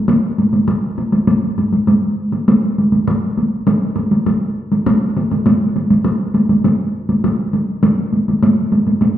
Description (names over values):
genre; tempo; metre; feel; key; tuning
japanese traditional; 101 BPM; 4/4; straight; none; none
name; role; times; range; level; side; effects
taiko ensemble; percussion; 0.1-9.1 s; none; -13 LUFS; equal; none
room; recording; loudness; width
wet recital hall reverb, RT60 1.4 s; recorded in a church or concert hall; -13 LUFS; side -11 dB against mid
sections
0.1-9.2 A section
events
none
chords
none